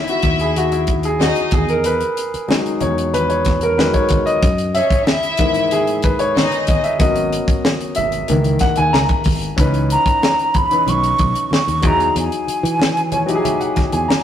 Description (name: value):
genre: lush 1970s-style soul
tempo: 93 BPM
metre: 4/4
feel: straight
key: C# dorian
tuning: A4 = 439 Hz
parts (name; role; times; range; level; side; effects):
- dark studio string section; second line; 0.0-6.8 s; C#4 to E5; -21 LUFS; left 3 dB; none
- warm grand piano; accompaniment; 0.0-14.2 s; D#3 to A#5; -19 LUFS; left 1 dB; none
- tight funk drum kit; drums; 0.1-14.2 s; hi-hat, kick drum, snare drum; -19 LUFS; equal; none
- fingered electric bass; bass; 0.2-14.1 s; G#1 to E3; -22 LUFS; equal; none
- congas; percussion; 0.2-14.2 s; none; -28 LUFS; right 2 dB; none
- breathy hollow jazz flute; melody; 9.9-14.2 s; G#5 to C#6; -18 LUFS; right 1 dB; none
room: moderate stone room reverb, RT60 1.0 s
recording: rough rehearsal-room recording, tube saturation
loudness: -14 LUFS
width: side -10 dB against mid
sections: 0.0-9.6 A section; 9.6-14.2 B section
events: grand piano solo 0.0-9.6; grand piano fill 12.8-14.2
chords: 0.0 C#m9 (rootless); 1.5 Emaj9; 4.4 F#13; 7.0 G#m11; 8.3 C#m69; 9.6 C#m9; 11.8 Emaj9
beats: 0.56 1.20 | 1.85 2.49 3.14 3.78 | 4.43 5.07 5.72 6.36 | 7.00 7.65 8.29 8.94 | 9.58 10.22 10.87 11.51 | 12.15 12.80 13.44 14.09